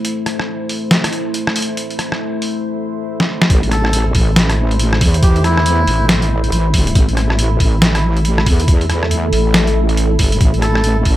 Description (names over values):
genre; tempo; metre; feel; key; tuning
deep dubstep; 139 BPM; 4/4; swing 61% on 16ths, half-time; A minor; A4 = 438 Hz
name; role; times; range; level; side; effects
deep dark ambient pad; sustained chords; 0.0-11.2 s; A3 to C5; -21 LUFS; equal; chorus, built-in reverb
trip hop sampler-style drum kit; drums; 0.0-11.2 s; hi-hat, rim click, snare drum; -18 LUFS; equal; none
wobble bass; bass; 3.5-11.2 s; G1 to E2; -15 LUFS; equal; chorus
electronic kick drum; drums; 3.5-11.2 s; none; -13 LUFS; equal; none
melodica; melody; 3.7-6.1, 10.6-11.0 s; E4 to A4; -21 LUFS; equal; dub echo
room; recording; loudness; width
light reverb; none; -12 LUFS; side -14 dB against mid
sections
0.0-3.5 A section; 3.5-11.2 B section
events
build-up 0.0-3.5; filter sweep on ambient pad 0.0-3.5; drum fill 3.2-3.5; drop 3.5-11.2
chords
0.0 Am